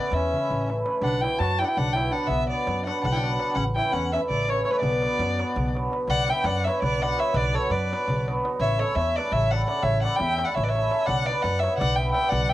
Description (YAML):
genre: balkan folk, Balkan wedding band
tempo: 335 BPM (eighths)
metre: 7/8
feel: straight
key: B minor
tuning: A4 = 440 Hz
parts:
  - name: warm violin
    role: melody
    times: 0.0-12.5 s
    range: B4 to A5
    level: -26 LUFS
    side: left 1 dB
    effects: cassette tape
  - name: accordion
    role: second line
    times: 0.0-12.5 s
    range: G3 to E5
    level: -31 LUFS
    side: right 1 dB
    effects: cassette tape
  - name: cimbalom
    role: accompaniment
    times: 0.0-12.5 s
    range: E3 to B4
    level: -28 LUFS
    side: right 1 dB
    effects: cassette tape
  - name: upright bass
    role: bass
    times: 0.1-12.5 s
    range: A1 to F#2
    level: -28 LUFS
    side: equal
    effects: none
  - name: darbuka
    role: percussion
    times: 0.1-12.4 s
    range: none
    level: -33 LUFS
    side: left 1 dB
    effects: none
room: light reverb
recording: home recording on cassette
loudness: -22 LUFS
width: side -14 dB against mid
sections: 0.0-6.1 A section; 6.1-12.5 A section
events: speeding up 0.0-12.5; drum fill 0.3-1.0, 10.5-11.1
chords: 0.0 A; 1.0 Bm; 3.6 A; 4.8 Bm; 8.6 A; 11.1 Bm